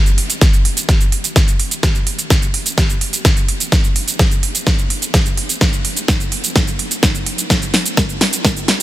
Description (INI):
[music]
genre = EDM, festival progressive house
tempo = 127 BPM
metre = 4/4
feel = straight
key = none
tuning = none
[part]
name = big-room dance drum kit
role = drums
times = 0.1-8.8 s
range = hi-hat, shaker, snare drum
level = -16 LUFS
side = right 1 dB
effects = none
[part]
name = electronic kick drum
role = drums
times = 0.4-8.5 s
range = none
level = -14 LUFS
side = equal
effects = none
[sound]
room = light reverb, digital ambience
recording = dense, heavily limited modern master, high-pass filter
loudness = -13 LUFS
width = side -15 dB against mid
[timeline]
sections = 0.0-8.8 A section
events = build-up 0.0-8.8; drum fill 0.0-8.8; filter sweep 0.0-8.8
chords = none